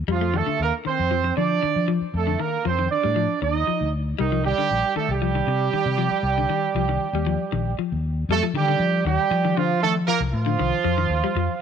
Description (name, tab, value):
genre	afrobeat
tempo	117 BPM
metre	4/4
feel	straight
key	F mixolydian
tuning	A4 = 440 Hz
part	mellow horn section	melody	0.1-11.6 s	Eb3 to Eb5	-23 LUFS	right 8 dB	none
part	clean electric guitar	arpeggios	0.1-11.5 s	D3 to A3	-28 LUFS	left 14 dB	none
part	fingered electric bass	bass	0.1-11.5 s	Bb1 to F3	-24 LUFS	left 1 dB	none
room	light reverb, studio reverb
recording	1960s-style stereo with parts hard left and right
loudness	-20 LUFS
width	side -7 dB against mid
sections	0.0-8.3 A section; 8.3-11.6 B section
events	none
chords	0.1 F7; 4.2 Cm; 8.3 F7(no3)